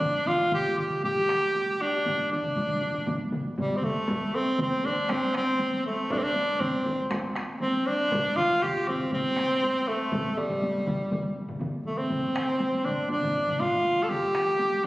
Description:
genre	japanese traditional, taiko drum ensemble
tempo	119 BPM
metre	4/4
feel	straight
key	G suspended pentatonic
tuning	A4 = 439 Hz
part	clear tenor saxophone	melody	0.0-14.9 s	G3 to A4	-25 LUFS	equal	none
part	taiko ensemble	percussion	0.0-14.9 s	none	-34 LUFS	equal	none
part	taiko ensemble	percussion	0.0-14.9 s	none	-42 LUFS	left 2 dB	none
part	taiko ensemble	percussion	0.0-14.9 s	none	-36 LUFS	equal	none
part	solo taiko drums	percussion	4.1-11.2 s	none	-37 LUFS	equal	none
room	wet concert hall reverb, RT60 1.8 s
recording	recorded on a phone in the room, club reverb, compression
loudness	-24 LUFS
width	side -18 dB against mid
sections	0.0-12.1 A section; 12.1-14.9 B section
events	speeding up 0.0-14.9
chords	none

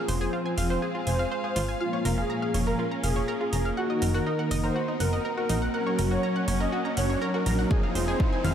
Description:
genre	melodic techno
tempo	122 BPM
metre	4/4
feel	straight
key	unclear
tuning	A4 = 438 Hz
part	soft supersaw	melody	0.0-8.4 s	F4 to Eb5	-31 LUFS	equal	sidechain pumping, tape echo
part	deep dark ambient pad	sustained chords	0.0-8.5 s	Ab3 to Eb5	-36 LUFS	right 2 dB	chorus, built-in reverb, sidechain pumping
part	brassy analog pad	stabs	0.0-8.5 s	Bb2 to Gb4	-31 LUFS	left 1 dB	chorus, tremolo, sidechain pumping, tape echo
part	riser	sound effects	0.0-8.5 s	none	-39 LUFS	right 2 dB	none
part	rich studio string section	texture	0.0-8.5 s	C4 to Gb5	-36 LUFS	equal	sidechain pumping
part	analog pluck	arpeggios	0.1-8.5 s	Eb4 to Bb5	-34 LUFS	equal	chorus, sidechain pumping, tape echo
part	plucky analog bass	bass	0.1-8.5 s	F1 to Bb1	-28 LUFS	equal	sidechain pumping
part	electronic hi-hat and congas	drums	0.1-8.5 s	none	-35 LUFS	right 1 dB	sidechain pumping on hats, sidechain pumping on perc
part	electronic kick drum	drums	7.7-8.3 s	none	-24 LUFS	equal	none
room	light reverb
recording	none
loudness	-24 LUFS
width	side -9 dB against mid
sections	0.0-8.5 A section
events	build-up 0.0-8.5; filter sweep on analog synth pad 0.0-8.5; drum fill 7.7-8.5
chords	0.0 Fm; 1.8 Bbm/F; 3.8 Ebm/Gb; 7.7 Fm

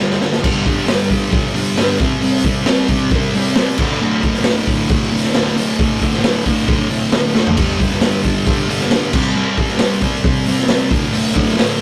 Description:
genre	garage rock duo or trio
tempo	135 BPM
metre	4/4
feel	straight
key	unclear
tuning	A4 = 441 Hz
part	thick fuzz guitar	riff	0.0-11.8 s	D2 to C4	-19 LUFS	equal	distortion
part	raw garage drum kit	drums	0.1-11.7 s	crash cymbal, hi-hat, kick drum, snare drum, toms	-19 LUFS	equal	none
room	moderate small room reverb, RT60 0.5 s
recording	rough rehearsal-room recording, tube saturation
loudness	-16 LUFS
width	mono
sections	0.4-11.8 A section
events	drum fill 0.0-0.4, 7.4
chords	0.0 G5; 2.0 C5; 3.8 D5; 7.6 G5; 9.1 C5; 10.9 D5

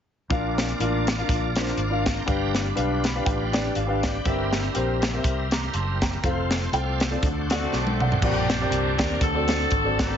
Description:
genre	uptempo gospel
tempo	121 BPM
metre	4/4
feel	swing 56% on 8ths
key	Bb major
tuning	A4 = 440 Hz
part	warm concert grand piano	accompaniment	0.3-10.1 s	G2 to D6	-27 LUFS	left 2 dB	none
part	bright tonewheel organ	sustained chords	0.3-10.2 s	F#3 to Bb5	-32 LUFS	right 3 dB	fast rotary speaker, overdrive, chorus vibrato
part	fingered electric bass	bass	0.3-10.1 s	F1 to Eb2	-28 LUFS	equal	none
part	crisp fusion drum kit	drums	0.3-10.1 s	crash cymbal, hi-hat, kick drum, snare drum, toms	-26 LUFS	equal	none
part	bright saxophone section	melody	7.5-10.2 s	A3 to Bb4	-27 LUFS	left 1 dB	none
room	light reverb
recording	heavily compressed radio sound, nothing above 7.6 kHz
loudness	-22 LUFS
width	side -8 dB against mid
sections	0.3-8.2 A section; 8.2-10.2 B section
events	grand piano fill 2.8-4.3, 7.2-8.2; tonewheel organ fill 7.2-8.2; drum fill 7.7-8.2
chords	0.3 Bb; 2.3 G7; 4.3 C7/G; 6.2 F; 7.2 D7; 8.2 Bb69; 9.2 D7

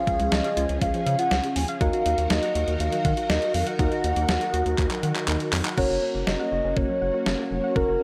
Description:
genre	synth-pop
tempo	121 BPM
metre	4/4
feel	straight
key	unclear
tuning	A4 = 435 Hz
part	hollow clarinet-like synth lead	melody	0.0-8.0 s	Bb4 to Ab5	-29 LUFS	equal	chorus, tape echo
part	soft electric-piano-like synth keys	accompaniment	0.0-8.0 s	F3 to Bb4	-34 LUFS	equal	chorus
part	phased string machine	sustained chords	0.0-8.0 s	Db3 to Bb4	-34 LUFS	equal	ensemble chorus, phaser
part	soft round pluck	arpeggios	0.0-8.0 s	F3 to Gb5	-35 LUFS	equal	chorus, tape echo
part	round analog bass	bass	0.1-8.0 s	F1 to Eb3	-30 LUFS	equal	none
part	detuned 8-bit digital drum machine	drums	0.1-7.9 s	crash cymbal, handclaps, hi-hat, kick drum, snare drum	-30 LUFS	equal	none
room	light reverb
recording	none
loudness	-24 LUFS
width	mono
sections	0.0-5.8 A section; 5.8-8.0 B section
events	drum fill 4.8-5.8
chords	0.0 Db; 1.8 Ebm; 5.8 Gb

